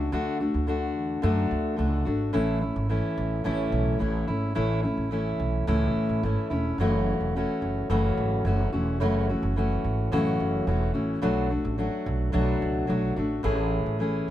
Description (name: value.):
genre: acoustic pop.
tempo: 108 BPM.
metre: 4/4.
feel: straight.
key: A major.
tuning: A4 = 440 Hz.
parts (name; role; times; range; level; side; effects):
fingerpicked steel-string acoustic guitar; accompaniment; 0.0-14.3 s; F#2 to G#4; -26 LUFS; left 1 dB; none.
upright bass; bass; 0.0-14.3 s; E1 to F#2; -28 LUFS; right 1 dB; none.
room: little or no reverb.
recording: close, detailed microphones.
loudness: -24 LUFS.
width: side -12 dB against mid.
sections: 0.0-14.3 A section.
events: none.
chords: 0.0 D; 2.3 A; 6.8 F#m7; 11.2 Bm7; 13.4 Amaj7.